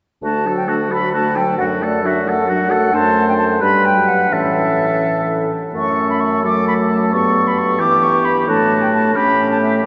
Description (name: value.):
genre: quick classical-period movement for wind quintet.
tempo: 88 BPM (dotted quarters).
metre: 6/8.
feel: rubato.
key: D major.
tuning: A4 = 441 Hz.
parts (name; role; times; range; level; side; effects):
mellow concert flute; melody; 0.2-9.8 s; D5 to D6; -20 LUFS; equal; none.
warm oboe; second line; 0.2-9.9 s; F#4 to C5; -23 LUFS; equal; none.
dark clarinet; accompaniment; 0.2-9.8 s; A3 to F#4; -26 LUFS; equal; none.
warm French horn; accompaniment; 0.2-9.8 s; E3 to A3; -24 LUFS; equal; none.
dark bassoon; bass; 0.2-9.9 s; D2 to A2; -24 LUFS; equal; none.
room: wet cathedral reverb, RT60 5.1 s.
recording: recorded in a church or concert hall, nothing above 7.9 kHz.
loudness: -16 LUFS.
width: mono.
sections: 0.2-9.9 A section.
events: none.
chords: 0.2 D; 1.6 D/F#; 3.6 G; 4.3 A; 5.7 F#m; 7.1 G; 7.8 Em/G; 8.5 D/A; 9.2 A7.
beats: | 0.23 0.91 | 1.59 2.26 | 2.93 3.62 | 4.32 5.03 | 5.74 6.44 | 7.13 7.80 | 8.47 9.15 | 9.85.